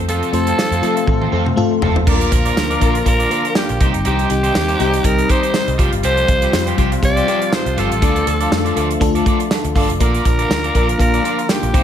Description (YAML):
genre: 1980s-style pop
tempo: 121 BPM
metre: 4/4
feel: swing 55% on 16ths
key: Bb major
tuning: A4 = 440 Hz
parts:
  - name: FM electric piano with soft pad layer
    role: accompaniment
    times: 0.0-11.8 s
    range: G3 to A5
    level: -20 LUFS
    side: left 4 dB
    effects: chorus, tremolo
  - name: sweeping resonant pad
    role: sustained chords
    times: 0.0-11.8 s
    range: C3 to F4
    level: -26 LUFS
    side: equal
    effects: chorus
  - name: vintage muted picked electric bass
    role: bass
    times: 0.0-11.8 s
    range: F1 to F3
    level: -21 LUFS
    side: equal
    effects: none
  - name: breathy alto saxophone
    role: melody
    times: 0.1-11.8 s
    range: G4 to D5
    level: -20 LUFS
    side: equal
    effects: tape echo
  - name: electric guitar at the edge of break-up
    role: riff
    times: 0.1-11.8 s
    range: C4 to D5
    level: -23 LUFS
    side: right 2 dB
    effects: wide subtle chorus, tape echo
  - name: modern studio drum kit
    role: drums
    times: 0.1-11.8 s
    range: crash cymbal, hi-hat, kick drum, snare drum, tambourine, toms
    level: -18 LUFS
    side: right 1 dB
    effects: none
room: light reverb, studio ambience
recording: none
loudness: -14 LUFS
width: side -9 dB against mid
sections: 0.0-2.1 A section; 2.1-11.8 B section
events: drum fill 1.1-2.1; FM electric piano fill 9.3-10.0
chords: 0.0 F; 2.1 Bb; 3.8 Cm; 5.8 Fsus2; 8.0 Dm; 10.0 Bb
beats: | 0.09 0.58 1.08 1.57 | 2.07 2.57 3.06 3.56 | 4.05 4.55 5.04 5.54 | 6.04 6.53 7.03 7.53 | 8.02 8.52 9.01 9.51 | 10.00 10.50 11.00 11.49